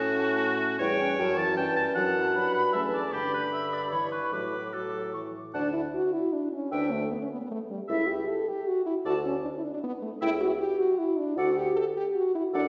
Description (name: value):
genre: quick classical-period movement for wind quintet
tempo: 154 BPM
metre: 3/4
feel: straight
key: D major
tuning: A4 = 440 Hz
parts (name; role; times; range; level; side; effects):
- silver concert flute; melody; 0.0-12.7 s; E5 to D6; -36 LUFS; equal; none
- warm oboe; second line; 0.0-12.7 s; F#4 to A5; -34 LUFS; equal; none
- mellow French horn; accompaniment; 0.0-12.6 s; D3 to A4; -31 LUFS; equal; none
- mellow clarinet; accompaniment; 0.0-12.7 s; C#4 to D5; -41 LUFS; equal; none
- warm bassoon; bass; 0.0-12.7 s; C#2 to A2; -35 LUFS; equal; none
room: wet recital hall reverb, RT60 1.5 s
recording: heard from further back in the room, nothing above 8.0 kHz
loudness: -28 LUFS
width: mono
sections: 0.0-5.5 A section; 5.5-12.7 B section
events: none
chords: 0.0 F#m/A; 0.8 A7/E; 2.0 D/F#; 3.1 G; 3.9 Em/G; 4.3 D/A; 5.1 A5; 5.5 D; 6.7 E7(no3)/D (rootless); 7.9 A/C#; 9.1 D5; 10.2 A7/C#; 11.4 D